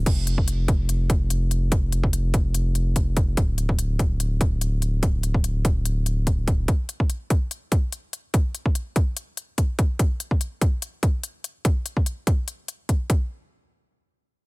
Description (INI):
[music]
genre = future bass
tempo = 145 BPM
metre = 4/4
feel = swing 53% on 16ths, half-time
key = unclear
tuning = A4 = 439 Hz
[part]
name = saturated sub bass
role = bass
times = 0.0-6.7 s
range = D1 to F1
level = -23 LUFS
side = equal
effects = tube saturation, sidechain pumping
[part]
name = electronic kick drum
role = drums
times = 0.1-13.2 s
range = none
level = -21 LUFS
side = equal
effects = none
[part]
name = trap drum kit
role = drums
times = 0.1-13.2 s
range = crash cymbal, hi-hat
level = -31 LUFS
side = left 5 dB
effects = none
[sound]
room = little or no reverb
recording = none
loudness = -21 LUFS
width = side -24 dB against mid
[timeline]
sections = 0.1-13.3 A section; 13.3-14.5 B section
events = none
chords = none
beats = | 0.06 0.48 0.89 1.30 | 1.72 2.13 2.54 2.96 | 3.37 3.79 4.20 4.61 | 5.03 5.44 5.86 6.27 | 6.68 7.10 7.51 7.92 | 8.34 8.75 9.17 9.58 | 9.99 10.41 10.82 11.23 | 11.65 12.06 12.48 12.89